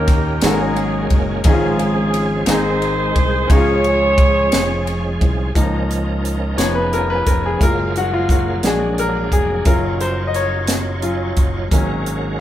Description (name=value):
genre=slow gospel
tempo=58 BPM (dotted quarters)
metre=6/8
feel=straight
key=Db major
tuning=A4 = 437 Hz
part: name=mellow horn section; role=melody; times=0.0-5.2 s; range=Db4 to Db5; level=-20 LUFS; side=right 1 dB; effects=none
part: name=bright grand piano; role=accompaniment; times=0.0-12.4 s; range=Ab2 to Eb5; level=-20 LUFS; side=left 2 dB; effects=none
part: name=bright tonewheel organ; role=sustained chords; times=0.0-12.4 s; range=Eb3 to F5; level=-25 LUFS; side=right 2 dB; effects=overdrive, chorus vibrato, fast rotary speaker
part: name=fingered electric bass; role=bass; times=0.0-12.4 s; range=F1 to Eb2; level=-22 LUFS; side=equal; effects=none
part: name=crisp fusion drum kit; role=drums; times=0.1-12.2 s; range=hi-hat, kick drum, ride cymbal, snare drum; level=-18 LUFS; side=equal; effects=none
room=moderate studio reverb, RT60 0.6 s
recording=band playing live in one room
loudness=-15 LUFS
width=side -12 dB against mid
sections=0.0-5.5 A section; 5.5-12.4 B section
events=grand piano solo 5.5-12.4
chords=0.4 Ab9sus4; 1.4 Db/Ab; 2.5 Ab; 3.5 Db; 5.5 Db69; 6.6 Db7/F; 7.6 Gbmaj9; 8.6 Bb7b13; 9.7 Ebm9/Gb; 11.7 Ab9sus4